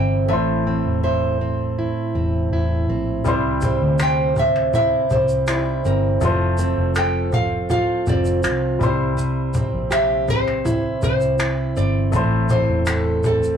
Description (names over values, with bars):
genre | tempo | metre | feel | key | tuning
acoustic pop | 81 BPM | 4/4 | straight | unclear | A4 = 444 Hz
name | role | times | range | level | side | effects
nylon-string guitar | melody | 0.0-13.6 s | A4 to G5 | -23 LUFS | equal | none
clear concert grand piano | accompaniment | 0.0-13.6 s | G3 to C5 | -28 LUFS | left 4 dB | none
fingerpicked plugged-in steel-string acoustic guitar | accompaniment | 0.0-13.6 s | A2 to C5 | -22 LUFS | right 3 dB | none
vintage muted fingered electric bass | bass | 0.0-13.6 s | E1 to D2 | -22 LUFS | left 1 dB | none
jazz brush drum kit | drums | 3.3-13.6 s | finger snaps, kick drum, shaker | -24 LUFS | left 1 dB | none
room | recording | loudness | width
moderate booth ambience, RT60 0.2 s | rough rehearsal-room recording, warm saturation | -17 LUFS | side -8 dB against mid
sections
0.0-13.6 A section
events
none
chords
0.3 Am; 3.3 C; 6.2 F; 8.8 C; 12.1 Am